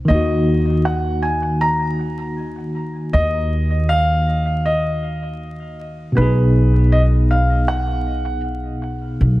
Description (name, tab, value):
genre	trip hop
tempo	79 BPM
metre	4/4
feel	swing 55% on 16ths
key	unclear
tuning	A4 = 440 Hz
part	tine electric piano	accompaniment	0.0-9.4 s	B2 to G#4	-22 LUFS	equal	harmonic tremolo, tape echo
part	upright bass	bass	0.0-9.4 s	B1 to Eb2	-19 LUFS	equal	none
part	felt-muted upright piano	melody	0.1-8.4 s	B4 to Bb5	-22 LUFS	equal	tape echo
room	light reverb, small room ambience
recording	vinyl crackle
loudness	-16 LUFS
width	side -17 dB against mid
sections	0.0-9.4 A section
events	none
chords	0.1 Ebm; 6.2 B6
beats	| 0.09 0.85 1.61 2.37 | 3.13 3.89 4.65 5.41 | 6.17 6.93 7.69 8.45 | 9.21